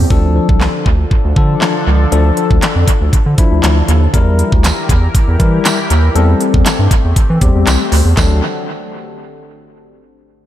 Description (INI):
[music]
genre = dance-pop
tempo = 119 BPM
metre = 4/4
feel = straight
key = D minor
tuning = A4 = 440 Hz
[part]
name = sweeping resonant pad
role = sustained chords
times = 0.0-8.4 s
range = D3 to Bb4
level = -22 LUFS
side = equal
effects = chorus, sidechain pumping, low-pass filter
[part]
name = round analog bass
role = bass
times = 0.0-8.4 s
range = C2 to E3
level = -12 LUFS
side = equal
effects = sidechain pumping
[part]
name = bright tine electric piano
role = accompaniment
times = 0.1-8.4 s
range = F3 to Bb4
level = -18 LUFS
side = left 6 dB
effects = auto-pan, sidechain pumping, low-pass filter, analog delay
[part]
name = pop drum kit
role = drums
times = 0.1-8.3 s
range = handclaps, hi-hat, kick drum, snare drum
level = -14 LUFS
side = equal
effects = analog delay
[part]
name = tambourine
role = percussion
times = 4.6-8.4 s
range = none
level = -26 LUFS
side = right 7 dB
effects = analog delay
[sound]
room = light reverb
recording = echo-heavy mix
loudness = -9 LUFS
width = side -12 dB against mid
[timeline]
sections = 0.1-8.2 A section; 8.2-10.2 B section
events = filter sweep 0.1-8.2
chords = 0.1 Dm; 4.1 Edim; 6.2 Am7/E; 8.2 D